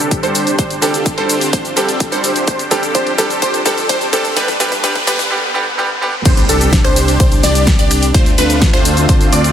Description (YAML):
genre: EDM, festival progressive house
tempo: 127 BPM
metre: 4/4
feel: straight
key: unclear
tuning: A4 = 443 Hz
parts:
  - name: lush unison pad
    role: sustained chords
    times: 0.0-9.5 s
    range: C3 to B4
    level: -25 LUFS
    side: equal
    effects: chorus, sidechain pumping
  - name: wide unison pluck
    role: arpeggios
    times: 0.0-9.5 s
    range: A4 to D5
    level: -20 LUFS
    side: equal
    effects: sidechain pumping, tape echo
  - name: supersaw chords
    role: riff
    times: 0.0-9.5 s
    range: A3 to D5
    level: -18 LUFS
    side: equal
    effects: sidechain pumping, tape echo
  - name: fat analog bass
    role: bass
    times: 0.0-9.5 s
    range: F1 to D2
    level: -20 LUFS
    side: equal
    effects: sidechain pumping, high-pass filter
  - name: big-room dance drum kit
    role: drums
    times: 0.0-9.5 s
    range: cabasa, crash cymbal, finger snaps, hi-hat, snare drum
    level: -19 LUFS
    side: left 1 dB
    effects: none
  - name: riser, noise sweep and impact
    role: sound effects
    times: 1.6-8.1 s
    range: none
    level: -26 LUFS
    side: equal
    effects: none
  - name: electronic kick drum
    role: drums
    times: 0.1-9.2 s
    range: none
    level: -14 LUFS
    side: equal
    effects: none
  - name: bright concert grand piano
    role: accompaniment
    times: 0.2-6.1 s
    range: D3 to A4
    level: -20 LUFS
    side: right 2 dB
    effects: sidechain pumping, tape echo
room: light reverb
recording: dense, heavily limited modern master, high-pass filter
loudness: -11 LUFS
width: side -9 dB against mid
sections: 0.0-6.3 A section; 6.3-9.5 B section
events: build-up 0.0-6.3; drum fill 0.0-5.3; filter sweep on supersaw synth 0.0-6.3; filter sweep on synth pluck 0.0-6.3; noise sweep 4.4-6.3; break 5.3-6.3; drop 6.3-9.5; impact 6.3-8.1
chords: 0.0 Csus2; 0.6 Dm7; 2.5 Fsus2; 4.4 G; 6.3 Csus2; 8.1 Dm7